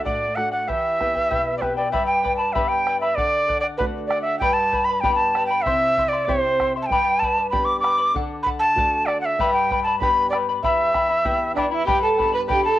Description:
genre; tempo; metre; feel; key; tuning
andean folk, Andean ensemble; 97 BPM; 2/4; straight; unclear; A4 = 440 Hz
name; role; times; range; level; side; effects
breathy bright quena; melody; 0.0-12.8 s; B4 to D6; -20 LUFS; right 1 dB; cassette tape, plate reverb
charango; accompaniment; 0.0-12.8 s; E4 to C6; -25 LUFS; left 6 dB; cassette tape, plate reverb
nylon-string guitar; accompaniment; 0.0-12.8 s; E2 to G4; -31 LUFS; equal; cassette tape, plate reverb
bombo; percussion; 0.1-12.6 s; none; -31 LUFS; right 2 dB; none
rich violin; second line; 11.6-12.8 s; D4 to B4; -22 LUFS; right 4 dB; cassette tape
room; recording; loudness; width
moderate studio reverb, RT60 0.6 s; home recording on cassette; -18 LUFS; side -14 dB against mid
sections
0.0-1.9 A section; 1.9-11.9 B section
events
none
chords
0.0 D; 0.7 Em; 1.9 G; 3.2 D; 4.4 G; 5.7 C; 6.9 G; 8.1 D; 9.4 G; 10.6 Em; 11.9 G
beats
0.06 | 0.69 1.31 | 1.93 2.55 | 3.17 3.80 | 4.42 5.04 | 5.66 6.28 | 6.90 7.52 | 8.14 8.76 | 9.39 10.01 | 10.63 11.25 | 11.87 12.49

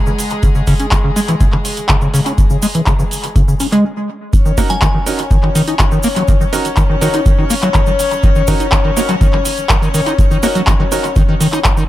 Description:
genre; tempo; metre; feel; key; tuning
acid house; 123 BPM; 4/4; straight; Eb minor; A4 = 440 Hz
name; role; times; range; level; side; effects
rich chamber string section; sustained chords; 0.0-11.9 s; Ab3 to Db5; -21 LUFS; left 5 dB; sidechain pumping
acid bass, square; riff; 0.1-11.8 s; Db3 to Eb4; -17 LUFS; equal; lush chorus, sidechain pumping, analog delay
tube shaker; percussion; 0.1-11.9 s; none; -27 LUFS; right 4 dB; none
booming analog drum machine; drums; 0.2-11.7 s; handclaps, hi-hat; -20 LUFS; equal; analog delay
electronic kick drum; drums; 0.4-11.7 s; none; -13 LUFS; equal; none
bright grand piano; stabs; 4.6-11.0 s; Db4 to Bb4; -22 LUFS; right 4 dB; analog delay
glassy synth bell; melody; 4.7-5.1 s; Ab5; -27 LUFS; left 1 dB; chorus, dub echo
room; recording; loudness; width
light reverb, small room ambience; echo-heavy mix; -11 LUFS; side -14 dB against mid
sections
0.0-4.3 A section; 4.3-11.9 B section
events
stop 3.8-4.3; drop 4.3-11.9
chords
0.0 Db5; 4.3 Ebm7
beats
| 0.43 0.92 1.41 1.89 | 2.38 2.87 3.36 3.85 | 4.33 4.82 5.31 5.80 | 6.28 6.77 7.26 7.75 | 8.23 8.72 9.21 9.70 | 10.19 10.67 11.16 11.65

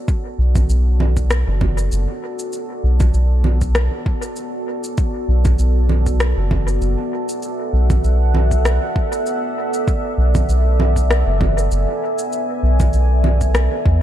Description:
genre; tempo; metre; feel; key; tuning
ambient dub; 98 BPM; 4/4; swing 55% on 16ths; unclear; A4 = 440 Hz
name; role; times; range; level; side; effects
deep dark ambient pad; sustained chords; 0.0-14.0 s; B3 to G#5; -23 LUFS; right 1 dB; chorus, built-in reverb
electronic kick drum; drums; 0.1-14.0 s; none; -20 LUFS; equal; overdrive, small room ambience
electronic shaker, congas and rim click; drums; 0.1-13.7 s; none; -24 LUFS; right 2 dB; overdrive, small room ambience, dub echo
soft dub sub bass; bass; 0.4-14.0 s; F#1 to E2; -15 LUFS; equal; none
room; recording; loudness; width
little or no reverb; none; -15 LUFS; side -12 dB against mid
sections
0.0-14.0 A section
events
fade-in on ambient pad 0.0-14.0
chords
0.0 Bm7; 5.0 Dadd9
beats
| 0.08 0.69 1.30 1.92 | 2.53 3.14 3.75 4.37 | 4.98 5.59 6.20 6.82 | 7.43 8.04 8.65 9.26 | 9.88 10.49 11.10 11.71 | 12.32 12.94 13.55

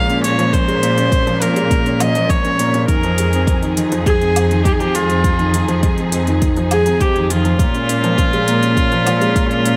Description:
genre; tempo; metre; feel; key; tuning
piano and strings electronica; 102 BPM; 4/4; straight; F minor; A4 = 441 Hz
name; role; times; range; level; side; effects
warm viola; melody; 0.0-9.8 s; F4 to F5; -21 LUFS; equal; none
dark studio string section; sustained chords; 0.0-9.8 s; F3 to Ab4; -27 LUFS; equal; none
felt-muted upright piano; riff; 0.0-9.8 s; Eb3 to Db4; -22 LUFS; equal; none
rich chamber cello section; bass; 0.0-9.8 s; F2 to Bb2; -22 LUFS; equal; sidechain pumping
electronic hi-hat and woodblock; drums; 0.1-9.8 s; none; -28 LUFS; equal; studio reverb
electronic kick drum; drums; 0.5-9.5 s; none; -20 LUFS; equal; studio reverb
room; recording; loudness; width
light reverb, small room ambience; none; -16 LUFS; mono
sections
0.0-9.8 A section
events
none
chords
0.0 Bbm7; 2.9 Fm7; 7.6 Bbm7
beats
| 0.53 1.12 1.71 2.30 | 2.89 3.48 4.06 4.65 | 5.24 5.83 6.42 7.00 | 7.59 8.18 8.77 9.36

